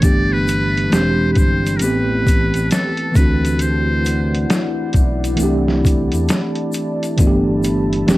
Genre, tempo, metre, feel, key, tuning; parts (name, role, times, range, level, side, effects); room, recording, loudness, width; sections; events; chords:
lo-fi hip hop; 67 BPM; 4/4; swing 65% on 16ths; G major; A4 = 440 Hz
trumpet with metal mute; melody; 0.0-4.5 s; A4 to D5; -23 LUFS; left 1 dB; low-pass filter, cassette tape, analog delay, plate reverb
tine electric piano; accompaniment; 0.0-8.2 s; E3 to G4; -18 LUFS; right 1 dB; overdrive, fast stereo tremolo, cassette tape, low-pass filter
deep dark ambient pad; sustained chords; 0.5-8.2 s; E4 to A5; -27 LUFS; left 2 dB; chorus, built-in reverb, low-pass filter, cassette tape
smooth synth bass; bass; 0.0-8.2 s; E1 to E2; -21 LUFS; equal
lo-fi sampler-style drum kit; drums; 0.0-8.2 s; hi-hat, kick drum, snare drum; -16 LUFS; equal; cassette tape
egg shaker; percussion; 0.0-8.2 s; -33 LUFS; left 5 dB
light reverb; home recording on cassette; -14 LUFS; side -18 dB against mid
0.0-8.2 A section
0.0 G69; 0.9 E7alt; 1.8 Am9; 3.2 D9; 5.4 C69; 7.2 G69